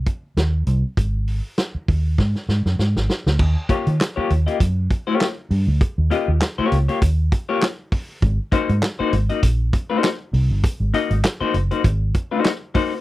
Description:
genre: funk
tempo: 99 BPM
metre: 4/4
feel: swing 56% on 16ths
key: unclear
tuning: A4 = 437 Hz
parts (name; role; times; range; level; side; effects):
- vintage muted fingered electric bass; bass; 0.0-12.1 s; Gb1 to Eb3; -19 LUFS; equal; none
- vintage drum kit; drums; 0.1-12.9 s; crash cymbal, handclaps, hi-hat, kick drum, snare drum; -20 LUFS; equal; none
- semi-hollow electric guitar; accompaniment; 3.7-12.9 s; Bb3 to Eb5; -20 LUFS; left 5 dB; tremolo
room: little or no reverb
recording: dry, close 1970s-style studio recording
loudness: -18 LUFS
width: side -17 dB against mid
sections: 0.0-3.4 A section; 3.4-13.0 B section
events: drum fill 2.2-3.4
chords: 0.0 Ab5; 3.4 Eb9; 8.2 Ab9

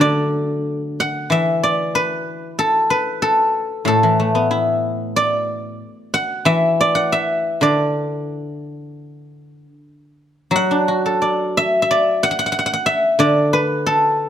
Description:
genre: chinese traditional, Chinese solo plucked strings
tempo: 92 BPM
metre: 4/4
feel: rubato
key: D gong mode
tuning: A4 = 441 Hz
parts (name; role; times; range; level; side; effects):
- guzheng; solo; 0.0-14.3 s; A2 to F#5; -16 LUFS; equal; none
room: light reverb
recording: close, detailed microphones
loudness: -16 LUFS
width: side -10 dB against mid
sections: 0.0-10.5 A section; 10.5-14.3 B section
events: none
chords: none

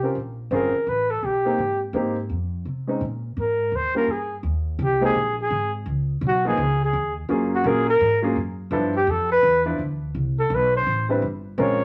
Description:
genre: jazz, small-group swing and bop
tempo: 168 BPM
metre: 4/4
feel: swing 63% on 8ths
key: Ab major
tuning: A4 = 440 Hz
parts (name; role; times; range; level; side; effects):
- warm flugelhorn; melody; 0.0-11.8 s; Gb4 to Db5; -23 LUFS; equal; none
- warm baby grand piano; accompaniment; 0.0-11.8 s; F3 to B4; -26 LUFS; equal; none
- upright bass; bass; 0.0-11.8 s; G1 to C3; -30 LUFS; equal; none
room: moderate studio reverb, RT60 0.7 s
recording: none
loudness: -23 LUFS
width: mono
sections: 0.0-4.4 A section; 4.4-11.8 B section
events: flugelhorn solo 4.4-11.8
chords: 0.2 Bbm9; 0.9 Asus2; 1.6 Abmaj9; 2.3 F5; 3.0 Absus2; 3.7 Eb7; 4.4 Abadd9; 5.9 Db7sus2; 7.3 Gbmaj9; 8.7 G13; 10.2 Cmaj7(no3)

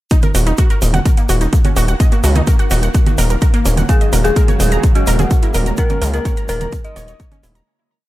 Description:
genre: melodic techno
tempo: 127 BPM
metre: 4/4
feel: straight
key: Eb minor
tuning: A4 = 442 Hz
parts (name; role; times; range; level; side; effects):
- wide unison pluck; arpeggios; 0.1-7.6 s; Bb3 to Bb5; -23 LUFS; right 1 dB; sidechain pumping, tape echo
- swarming drone; drone; 1.2-7.7 s; Eb3 to Bb3; -29 LUFS; left 1 dB; none
- electronic hi-hat and congas; drums; 0.1-7.6 s; none; -23 LUFS; right 4 dB; small room ambience, tape echo
- electronic kick drum; drums; 0.1-7.3 s; none; -13 LUFS; equal; small room ambience
- tube shaker; percussion; 0.1-7.6 s; none; -29 LUFS; right 2 dB; none
- gritty driven synth bass; bass; 0.3-7.6 s; Eb1 to Db2; -15 LUFS; equal; sidechain pumping
- soft octave-layered synth lead; melody; 3.9-7.6 s; Gb4 to Eb5; -23 LUFS; left 2 dB; chorus, sidechain pumping, tape echo
- dark detuned synth bell; second line; 3.9-7.6 s; Gb4 to Eb5; -25 LUFS; equal; chorus, tremolo, sidechain pumping, tape echo
- warm analog pad; sustained chords; 3.9-7.6 s; Db3 to Gb4; -27 LUFS; right 2 dB; chorus, sidechain pumping
room: little or no reverb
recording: echo-heavy mix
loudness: -12 LUFS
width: side -16 dB against mid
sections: 0.1-7.7 drop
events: drop 0.1-7.7; fade-out 5.2-7.7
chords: 0.1 Ebm; 3.9 Gbadd9/Eb

